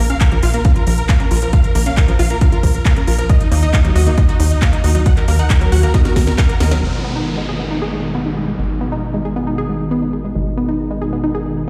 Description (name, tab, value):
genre	uplifting trance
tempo	136 BPM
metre	4/4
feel	straight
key	G# dorian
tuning	A4 = 438 Hz
part	big supersaw lead	melody	0.0-6.8 s	D#4 to F#5	-26 LUFS	equal	sidechain pumping, low-pass filter, delay
part	analog pluck	arpeggios	0.0-11.5 s	E#3 to F#5	-25 LUFS	equal	chorus, sidechain pumping, delay
part	tight sequencer bass	bass	0.0-11.7 s	G#1 to D#2	-20 LUFS	equal	sidechain pumping
part	techno drum kit	drums	0.1-6.9 s	crash cymbal, handclaps, hi-hat, snare drum	-27 LUFS	equal	low-pass filter on hats, low-pass filter on snare, low-pass filter on cymbals, low-pass filter on room
part	electronic kick drum	drums	0.2-6.5 s	none	-16 LUFS	equal	none
part	filtered supersaw swell	sustained chords	6.8-11.6 s	B2 to D#4	-25 LUFS	equal	sidechain pumping, low-pass filter
part	downlifter	sound effects	6.8-10.4 s	none	-29 LUFS	equal	none
room	light reverb, digital ambience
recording	played on a big sound system in a bare room, stone room reverb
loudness	-15 LUFS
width	mono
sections	0.0-6.8 A section; 6.8-11.7 B section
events	filter sweep on synth arpeggio sound 0.0-6.8, 6.8-11.7; drum fill 5.9-6.8; band accent 6.7; filter sweep on supersaw synth 6.8-11.7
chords	0.0 A#m; 3.3 D#m; 6.8 G#m